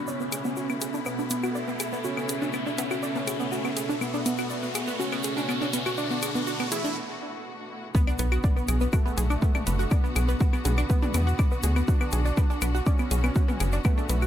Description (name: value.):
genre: melodic techno.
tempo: 122 BPM.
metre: 4/4.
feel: straight.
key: B dorian.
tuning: A4 = 440 Hz.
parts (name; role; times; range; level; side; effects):
clear studio string section; sustained chords; 0.0-14.3 s; B2 to F#4; -37 LUFS; left 1 dB; sidechain pumping.
wide unison pluck; arpeggios; 0.0-14.3 s; B3 to D6; -31 LUFS; right 1 dB; sidechain pumping, dub echo.
riser and sub drop; sound effects; 0.0-9.9 s; none; -36 LUFS; equal; none.
ethereal airy pad; texture; 0.0-14.3 s; B3 to D6; -39 LUFS; right 1 dB; ensemble chorus, built-in reverb, sidechain pumping.
wide unison lead; melody; 0.1-14.3 s; A3 to E4; -33 LUFS; right 1 dB; cassette tape, sidechain pumping, tape echo.
egg shaker; percussion; 0.1-14.3 s; none; -40 LUFS; right 2 dB; none.
house drum kit; drums; 0.3-14.3 s; claves, hi-hat, toms; -33 LUFS; left 4 dB; overdrive, high-pass filter on hats, high-pass filter on toms, high-pass filter on perc, tape echo.
electronic kick drum; drums; 7.9-13.9 s; none; -23 LUFS; equal; overdrive.
tight sequencer bass; bass; 8.2-14.3 s; F#1 to E2; -24 LUFS; equal; sidechain pumping.
room: light reverb.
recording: echo-heavy mix.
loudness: -24 LUFS.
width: side -11 dB against mid.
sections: 0.0-7.9 A section; 7.9-14.3 B section.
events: build-up 0.0-7.9; riser 0.0-7.0; filter sweep on synth arpeggio sound 0.0-7.9; filter sweep on analog synth lead 0.0-7.9; break 7.0-7.9; drop 7.9-14.3; impact 7.9-9.9.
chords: 0.1 Asus2; 7.9 Bm.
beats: | 0.08 0.57 1.06 1.55 | 2.04 2.54 3.03 3.52 | 4.01 4.50 5.00 5.49 | 5.98 6.47 6.96 7.46 | 7.95 8.44 8.93 9.42 | 9.91 10.41 10.90 11.39 | 11.88 12.37 12.87 13.36 | 13.85.